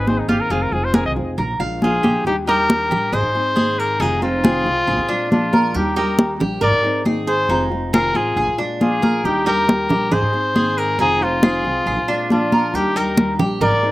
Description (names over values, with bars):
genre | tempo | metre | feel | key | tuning
latin, Cuban son and guajira | 137 BPM | 4/4 | straight | Eb major | A4 = 440 Hz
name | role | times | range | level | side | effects
clear trumpet | melody | 0.0-13.9 s | Eb4 to Eb5 | -20 LUFS | left 1 dB | slapback echo
nylon-string guitar | accompaniment | 0.0-13.9 s | C3 to Ab4 | -24 LUFS | left 2 dB | none
Cuban tres | arpeggios | 0.0-13.9 s | D4 to F5 | -25 LUFS | right 2 dB | slapback echo
upright bass | bass | 0.0-13.9 s | F1 to Bb2 | -26 LUFS | equal | none
congas | percussion | 0.1-13.9 s | none | -18 LUFS | equal | none
flamenco guitar | second line | 1.8-13.9 s | C4 to Bb4 | -25 LUFS | right 2 dB | none
room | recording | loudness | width
little or no reverb | recorded outdoors, with no room sound | -16 LUFS | side -17 dB against mid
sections
0.0-2.3 A section; 2.3-13.9 B section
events
trumpet solo 0.0-2.3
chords
0.0 Abmaj7; 0.5 Fm7; 1.4 Bb7; 2.3 Ebmaj7; 3.1 Ab; 4.0 Fm7; 4.9 Bb7; 5.7 Ebmaj7; 6.6 Abadd9; 7.5 Fm7; 8.4 Bb7; 9.2 Ebmaj7; 10.1 Ab; 11.0 Fm7; 11.9 Bb7; 12.7 Ebmaj7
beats
0.07 | 0.51 0.94 1.38 1.82 | 2.25 2.69 3.13 3.56 | 4.00 4.44 4.88 5.31 | 5.75 6.18 6.62 7.06 | 7.50 7.93 8.37 8.81 | 9.24 9.68 10.12 10.55 | 10.99 11.43 11.86 12.30 | 12.74 13.17 13.61